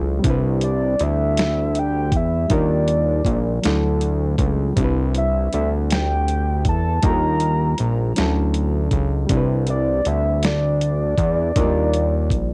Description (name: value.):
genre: slow six-eight R&B.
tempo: 53 BPM (dotted quarters).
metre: 6/8.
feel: straight.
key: C major.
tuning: A4 = 439 Hz.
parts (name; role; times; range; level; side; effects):
reed electric piano; accompaniment; 0.0-12.5 s; F3 to B4; -28 LUFS; equal; cassette tape, plate reverb.
fat analog bass; bass; 0.0-12.5 s; Bb1 to E2; -22 LUFS; equal; none.
dusty soul sampler-style drum kit; drums; 0.2-12.5 s; hi-hat, kick drum, snare drum; -25 LUFS; equal; cassette tape.
soft octave-layered synth lead; melody; 0.6-12.5 s; D5 to Bb5; -26 LUFS; equal; chorus, cassette tape, plate reverb.
room: light reverb.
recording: home recording on cassette.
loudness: -20 LUFS.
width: mono.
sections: 0.0-12.5 A section.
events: none.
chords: 0.2 Cmaj9; 2.5 Ebmaj9; 3.6 Dmaj9; 4.8 Cmaj9; 7.0 Ebmaj9; 8.2 Dmaj9; 9.3 Cmaj9; 11.6 Ebmaj9.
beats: | 0.24 1.37 | 2.50 3.63 | 4.77 5.90 | 7.03 8.16 | 9.30 10.43 | 11.56.